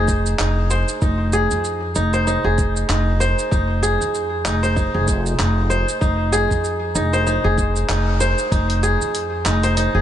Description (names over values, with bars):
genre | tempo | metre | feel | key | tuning
organic downtempo | 96 BPM | 4/4 | swing 57% on 16ths | F minor | A4 = 441 Hz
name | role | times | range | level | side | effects
kora | arpeggios | 0.0-10.0 s | Eb4 to C5 | -20 LUFS | equal | tape echo
upright bass | bass | 0.0-10.0 s | F1 to F2 | -20 LUFS | equal | sidechain pumping
deep house drum kit | drums | 0.1-9.9 s | handclaps, hi-hat, shaker | -27 LUFS | right 1 dB | none
electronic kick drum | drums | 0.1-8.7 s | none | -20 LUFS | equal | none
room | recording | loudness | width
light reverb | nothing above 10.4 kHz | -17 LUFS | side -10 dB against mid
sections
0.0-8.5 A section; 8.5-10.0 B section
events
band accent 7.9-8.2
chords
0.0 Fm7